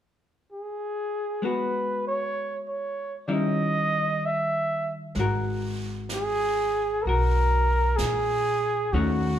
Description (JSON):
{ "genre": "jazz ballad", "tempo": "64 BPM", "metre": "4/4", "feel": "swing 66% on 8ths", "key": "G# minor", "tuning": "A4 = 441 Hz", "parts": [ { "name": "warm flugelhorn", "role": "melody", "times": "0.5-9.4 s", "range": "F#4 to E5", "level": "-26 LUFS", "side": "right 1 dB", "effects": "none" }, { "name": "vintage hollow-body jazz guitar", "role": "accompaniment", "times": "1.4-9.4 s", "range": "D#3 to A#4", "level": "-29 LUFS", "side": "left 2 dB", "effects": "none" }, { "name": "jazz brush drum kit", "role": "drums", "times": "5.1-9.4 s", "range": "brushed snare drum, hi-hat, snare drum", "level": "-39 LUFS", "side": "right 3 dB", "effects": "none" }, { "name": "upright bass", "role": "bass", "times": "5.2-9.4 s", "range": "G#1 to A#2", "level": "-27 LUFS", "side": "equal", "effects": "none" } ], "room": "moderate large studio reverb, RT60 1.2 s", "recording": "band playing live in one room", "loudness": "-24 LUFS", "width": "side -10 dB against mid", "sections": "0.0-1.4 A section; 1.4-5.1 B section; 5.1-9.4 C section", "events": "none", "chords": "0.0 N.C.; 1.4 G#m7; 3.3 D#7b9; 5.1 G#m9" }